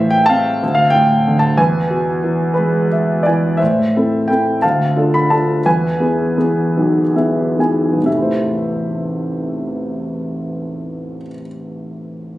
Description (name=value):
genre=classical, lyrical solo piano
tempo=41-64 BPM (dotted quarters)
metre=6/8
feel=rubato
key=A minor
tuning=A4 = 441 Hz
part: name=warm concert grand piano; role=solo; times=0.0-12.4 s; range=A1 to B5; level=-14 LUFS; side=equal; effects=none
room=light reverb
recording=recorded on a phone in the room, club reverb, compression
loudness=-14 LUFS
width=side -16 dB against mid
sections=0.0-3.6 A section; 3.6-8.1 B section; 8.1-12.4 C section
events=grand piano fill 2.6-3.6, 6.8-8.1; slowing down 3.6-8.1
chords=0.0 Am; 0.6 Dm; 1.6 E; 3.6 Am; 4.6 Dm; 5.7 E; 8.1 Am